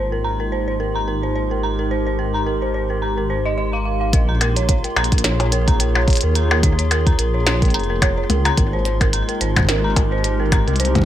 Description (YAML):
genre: IDM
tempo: 108 BPM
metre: 4/4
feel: swing 56% on 16ths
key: Bb dorian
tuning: A4 = 439 Hz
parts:
  - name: warbly tape-like pad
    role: sustained chords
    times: 0.0-11.1 s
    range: Ab3 to C6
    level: -25 LUFS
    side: equal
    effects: chorus, built-in reverb, vintage 12-bit sampler grit, sidechain pumping
  - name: dark detuned synth bell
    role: arpeggios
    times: 0.0-11.0 s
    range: Bb4 to Bb5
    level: -24 LUFS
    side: right 1 dB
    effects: chorus, phaser, digital delay
  - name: dark detuned saw bass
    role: bass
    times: 0.0-11.1 s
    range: F1 to Eb2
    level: -21 LUFS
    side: equal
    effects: tube saturation
  - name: electronic kick drum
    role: drums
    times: 4.1-11.0 s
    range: none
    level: -17 LUFS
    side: equal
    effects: none
  - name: glitchy drum kit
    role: drums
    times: 4.1-11.1 s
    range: hi-hat, percussion blips, snare drum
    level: -21 LUFS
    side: left 2 dB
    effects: none
room: light reverb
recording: none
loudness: -16 LUFS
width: side -12 dB against mid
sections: 0.0-4.1 A section; 4.1-11.1 B section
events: filter sweep on synth bell 0.0-4.1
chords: 0.0 Abmaj7; 4.1 Bbm9; 8.6 Abmaj7